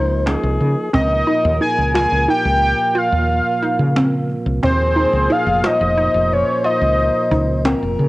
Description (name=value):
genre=progressive instrumental, band music in an uneven meter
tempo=179 BPM (eighths)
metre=11/8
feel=straight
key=unclear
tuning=A4 = 445 Hz
part: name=dark alto saxophone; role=second line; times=0.0-8.1 s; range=Ab4 to C5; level=-25 LUFS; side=left 3 dB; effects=cassette tape
part: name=tonewheel organ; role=accompaniment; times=0.0-8.1 s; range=Bb2 to Eb4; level=-25 LUFS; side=right 2 dB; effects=slow rotary speaker, cassette tape
part: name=hollow square pluck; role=arpeggios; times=0.0-8.1 s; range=C4 to F4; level=-22 LUFS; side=right 1 dB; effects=chorus, cassette tape
part: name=woody fretless electric bass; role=bass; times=0.0-8.1 s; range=F1 to Db3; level=-19 LUFS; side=equal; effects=none
part: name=cajon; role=drums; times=0.3-8.1 s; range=none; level=-27 LUFS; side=equal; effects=cassette tape
part: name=fat analog lead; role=melody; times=0.9-7.6 s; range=C5 to Ab5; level=-17 LUFS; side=equal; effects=cassette tape
room=light reverb, studio reverb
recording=home recording on cassette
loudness=-14 LUFS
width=side -19 dB against mid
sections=0.0-8.1 A section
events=none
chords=0.0 Dbmaj7; 0.9 Abadd9